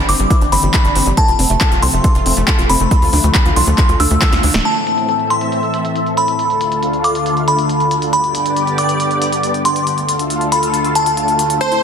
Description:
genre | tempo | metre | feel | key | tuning
uplifting trance | 138 BPM | 4/4 | straight | unclear | A4 = 440 Hz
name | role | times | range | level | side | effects
analog string pad | sustained chords | 0.0-11.8 s | D2 to E5 | -19 LUFS | left 1 dB | ensemble chorus, sidechain pumping
wide unison pluck | arpeggios | 0.0-4.6, 11.6-11.8 s | G3 to A4 | -23 LUFS | right 2 dB | sidechain pumping, dub echo
tight sequencer bass | bass | 0.0-4.6 s | D1 to D2 | -16 LUFS | equal | sidechain pumping
glassy synth bell | second line | 0.1-11.8 s | A5 to E6 | -17 LUFS | left 1 dB | chorus, ping-pong delay
big-room dance drum kit | drums | 0.1-11.8 s | handclaps, hi-hat, snare drum | -21 LUFS | equal | sidechain pumping on hats, low-pass filter on hats, low-pass filter on snare, low-pass filter on room
electronic kick drum | drums | 0.3-4.3 s | none | -14 LUFS | equal | none
dense compressed supersaw | melody | 11.6-11.8 s | C5 | -15 LUFS | equal | sidechain pumping
plucky unison lead | second line | 11.6-11.8 s | C5 | -21 LUFS | left 2 dB | none
room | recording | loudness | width
moderate lush hall reverb, RT60 1.8 s | dense, heavily limited modern master | -12 LUFS | side -7 dB against mid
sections
0.0-4.7 A section; 4.7-11.8 B section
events
filter sweep on analog synth pad 0.0-4.7; drum fill 4.2-4.7; band accent 4.5; filter sweep on drum 4.7-11.8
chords
0.0 Cadd9/G; 1.2 F; 2.9 Dm; 4.7 Am; 6.4 Dm; 8.1 G; 9.9 Dm

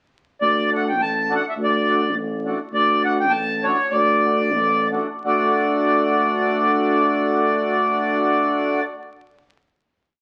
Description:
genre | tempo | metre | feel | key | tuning
alpine folk, alpine dance band | 84-104 BPM | 2/4 | straight | D major | A4 = 439 Hz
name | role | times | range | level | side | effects
accordion | melody | 0.4-8.8 s | C#5 to A5 | -22 LUFS | equal | none
warm tuba | bass | 0.4-8.8 s | A1 to D2 | -26 LUFS | equal | none
mellow accordion | accompaniment | 0.7-8.8 s | A3 to F#4 | -25 LUFS | equal | none
room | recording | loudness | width
wet large studio reverb, RT60 0.9 s | very old 78 rpm record, vinyl crackle | -20 LUFS | mono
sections
0.4-5.3 A section; 5.3-8.1 final chord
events
slowing down 2.7-5.3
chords
0.4 D

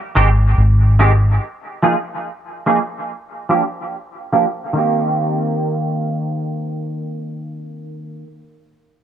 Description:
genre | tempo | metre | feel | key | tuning
reggae | 72 BPM | 4/4 | straight | C minor | A4 = 435 Hz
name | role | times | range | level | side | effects
semi-hollow electric guitar | accompaniment | 0.2-8.3 s | Eb3 to Ab4 | -18 LUFS | right 2 dB | analog chorus, low-pass filter, dub echo
vintage muted fingered electric bass | bass | 0.2-1.4 s | Ab1 | -11 LUFS | equal | none
room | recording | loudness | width
light reverb, small room reverb | echo-heavy mix | -15 LUFS | side -10 dB against mid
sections
0.0-4.7 A section; 4.7-8.1 B section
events
filter sweep on clean electric guitar 0.0-4.7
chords
0.0 Abmaj7; 1.4 Bb7sus4; 3.1 Gm7; 4.7 Cm7

